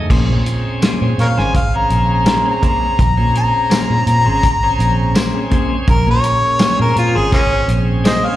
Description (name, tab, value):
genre	straight-eighth soul blues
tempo	83 BPM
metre	4/4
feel	swing 54% on 16ths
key	Bb minor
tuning	A4 = 440 Hz
part	bright tonewheel organ	accompaniment	0.0-8.4 s	A3 to G#4	-25 LUFS	right 3 dB	overdrive, slow rotary speaker, slapback echo
part	electric guitar at the edge of break-up	stabs	0.1-8.3 s	Bb3 to C5	-23 LUFS	left 5 dB	slapback echo
part	vintage muted fingered electric bass	bass	0.1-8.0 s	Ab1 to Bb2	-16 LUFS	equal	none
part	warm soul drum kit	drums	0.1-8.2 s	crash cymbal, hi-hat, kick drum, snare drum, tambourine	-17 LUFS	equal	slapback echo
part	warm harmonica	melody	1.2-8.4 s	Ab3 to Bb5	-16 LUFS	left 1 dB	overdrive, slapback echo
room	light reverb, studio ambience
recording	live gig heard through the venue's PA, recital hall reverb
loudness	-12 LUFS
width	side -14 dB against mid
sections	0.1-8.4 A section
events	harmonica solo 0.1-8.4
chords	0.1 Bbm9